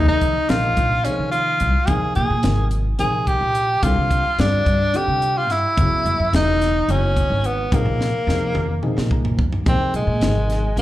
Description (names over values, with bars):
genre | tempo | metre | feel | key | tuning
electric jazz fusion | 216 BPM (eighths) | 7/8 | straight | Bb dorian | A4 = 439 Hz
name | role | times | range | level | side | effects
breathy tenor saxophone | melody | 0.0-10.8 s | Ab3 to Ab4 | -20 LUFS | equal | plate reverb, slapback echo, tape echo
dark baby grand piano | accompaniment | 0.0-10.8 s | C3 to Bb5 | -27 LUFS | left 2 dB | plate reverb, slapback echo
upright bass | bass | 0.0-10.8 s | Fb1 to Eb3 | -21 LUFS | equal | none
crisp fusion drum kit | drums | 0.2-10.8 s | hi-hat, kick drum, snare drum, toms | -23 LUFS | equal | none
room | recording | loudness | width
light reverb | live gig heard through the venue's PA, club reverb | -17 LUFS | side -15 dB against mid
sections
0.0-9.7 A section; 9.7-10.8 A section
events
drum fill 8.0-9.7; grand piano fill 8.8-9.7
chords
0.0 Ebsus24; 1.9 Bb9sus4; 3.8 Csus24; 5.8 Gb9sus4; 7.7 Bb9sus4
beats
0.22 0.49 0.77 1.05 1.33 1.61 | 1.89 2.16 2.44 2.72 3.00 3.27 3.55 | 3.83 4.11 4.39 4.66 4.94 5.22 5.50 | 5.77 6.05 6.33 6.61 6.88 7.16 7.44 | 7.72 7.99 8.27 8.55 8.83 9.10 9.38 | 9.66 9.94 10.21 10.49 10.77